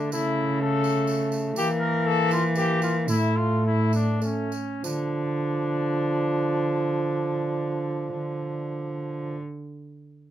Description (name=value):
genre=classical, renaissance-style consort dance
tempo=95-125 BPM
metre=3/4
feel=straight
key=D harmonic minor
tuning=A4 = 440 Hz
part: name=mellow cornet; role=melody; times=0.0-9.4 s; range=C#4 to Bb4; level=-29 LUFS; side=left 3 dB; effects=none
part: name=mellow bassoon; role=accompaniment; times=0.0-9.4 s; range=F3 to Bb3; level=-28 LUFS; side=right 1 dB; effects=none
part: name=dark cello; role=bass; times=0.0-9.4 s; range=A2 to E3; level=-26 LUFS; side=right 1 dB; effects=none
part: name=tambourine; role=percussion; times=0.1-5.1 s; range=none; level=-40 LUFS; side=right 5 dB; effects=none
room=moderate small room reverb, RT60 0.5 s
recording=dark, warm production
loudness=-23 LUFS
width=side -12 dB against mid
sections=0.0-4.8 A section; 4.8-8.6 B section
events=slowing down 0.9-4.8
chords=0.1 A/C#; 1.6 Edim; 3.1 A; 4.8 Dm